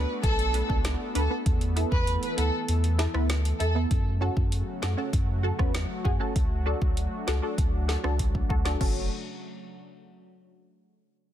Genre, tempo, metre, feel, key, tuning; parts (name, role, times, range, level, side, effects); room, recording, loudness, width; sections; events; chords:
dancehall; 98 BPM; 4/4; straight; F# minor; A4 = 436 Hz
warm symphonic violin section; melody; 0.0-3.7 s; A4 to B4; -32 LUFS; equal; tape echo
punchy chord stab; accompaniment; 0.0-9.1 s; B3 to B4; -33 LUFS; right 1 dB; chorus, phaser, low-pass filter
lush unison pad; sustained chords; 0.0-9.1 s; C#3 to A4; -36 LUFS; equal; chorus, sidechain pumping, low-pass filter
warm sub bass; bass; 0.0-9.1 s; F#1 to F#2; -27 LUFS; equal
afro-pop drum kit; drums; 0.2-8.9 s; crash cymbal, hi-hat, kick drum, rim click, snare drum; -28 LUFS; equal; soft clipping on snare
digital ambience; dense, heavily limited modern master; -24 LUFS; side -11 dB against mid
0.0-3.9 A section; 3.9-8.8 B section; 8.8-11.3 C section
kick muted 2.7-3.9; drum fill 8.2-8.8
0.0 Bm7; 1.5 Esus4; 3.9 F#m; 6.4 D; 8.8 F#m